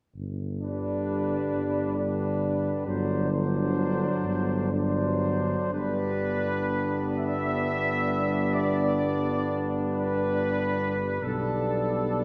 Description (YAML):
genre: classical, hymn-like piece for brass band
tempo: 44 BPM (dotted quarters)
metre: 12/8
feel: rubato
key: G major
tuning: A4 = 438 Hz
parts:
  - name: mellow tuba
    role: bass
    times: 0.2-12.2 s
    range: G1 to B1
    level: -32 LUFS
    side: equal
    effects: none
  - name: clear trumpet section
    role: melody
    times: 0.6-12.2 s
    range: A4 to E5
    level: -34 LUFS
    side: equal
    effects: none
  - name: clear flugelhorn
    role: second line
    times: 0.6-12.2 s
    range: D4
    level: -34 LUFS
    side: equal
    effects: none
  - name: clear euphonium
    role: accompaniment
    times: 0.6-12.2 s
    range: F#3 to B3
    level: -34 LUFS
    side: equal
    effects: none
  - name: warm trombone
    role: accompaniment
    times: 0.6-12.2 s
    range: D3 to G3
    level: -37 LUFS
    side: equal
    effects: none
room: wet concert hall reverb, RT60 2.4 s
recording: heard from further back in the room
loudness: -27 LUFS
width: mono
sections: 0.2-5.7 A section; 5.7-12.2 B section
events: none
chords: 0.2 G; 2.9 D7/G; 5.7 G; 11.2 G/B